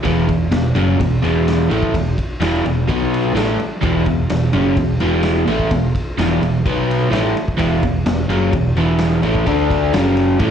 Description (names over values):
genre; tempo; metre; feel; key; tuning
garage rock duo or trio; 128 BPM; 4/4; straight; unclear; A4 = 440 Hz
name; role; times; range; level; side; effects
overdriven electric guitar; riff; 0.0-10.5 s; E2 to D4; -16 LUFS; equal; none
raw garage drum kit; drums; 0.0-10.5 s; kick drum, ride cymbal, snare drum; -23 LUFS; equal; none
growling picked electric bass; bass; 0.1-10.5 s; E1 to D2; -21 LUFS; equal; overdrive
room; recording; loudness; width
light reverb; live gig heard through the venue's PA, club reverb; -14 LUFS; side -8 dB against mid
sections
0.0-10.5 A section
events
none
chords
0.0 E5; 2.9 B5; 3.4 E5; 6.6 B5; 7.1 E5; 9.5 D5; 9.9 F#5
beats
| 0.06 0.53 1.00 1.47 | 1.94 2.41 2.88 3.35 | 3.82 4.29 4.76 5.23 | 5.70 6.17 6.64 7.11 | 7.58 8.05 8.52 8.99 | 9.46 9.93 10.40